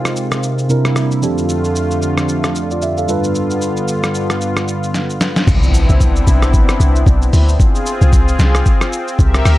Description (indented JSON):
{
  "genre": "amapiano",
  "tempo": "113 BPM",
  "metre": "4/4",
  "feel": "swing 58% on 16ths",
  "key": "C major",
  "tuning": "A4 = 440 Hz",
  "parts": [
    { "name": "mellow tine electric piano", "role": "accompaniment", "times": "0.0-5.5 s", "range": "C3 to F5", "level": "-18 LUFS", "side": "right 2 dB", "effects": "wide subtle chorus" },
    { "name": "warm analog pad", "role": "sustained chords", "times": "0.0-9.6 s", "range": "F2 to E5", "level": "-19 LUFS", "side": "left 1 dB", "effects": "chorus" },
    { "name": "lo-fi sampler-style drum kit", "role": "drums", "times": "0.1-9.6 s", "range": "crash cymbal, hi-hat, kick drum, rim click, shaker, snare drum", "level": "-16 LUFS", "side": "equal", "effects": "none" },
    { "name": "deep log drum bass", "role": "bass", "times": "5.5-9.6 s", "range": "B1 to D2", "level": "-12 LUFS", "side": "equal", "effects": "none" },
    { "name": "impact", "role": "sound effects", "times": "5.5-7.6 s", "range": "none", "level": "-20 LUFS", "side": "equal", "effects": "none" }
  ],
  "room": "little or no reverb",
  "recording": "dark, warm production",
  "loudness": "-12 LUFS",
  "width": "side -16 dB against mid",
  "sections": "0.0-5.5 A section; 5.5-9.6 B section",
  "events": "drum fill 4.9-5.5; drop 5.5-9.6; impact 5.5-7.6",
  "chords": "0.0 Ab69/C; 0.7 C7; 1.2 F6; 3.1 G7; 5.5 Cmaj9; 7.6 Ab6/C"
}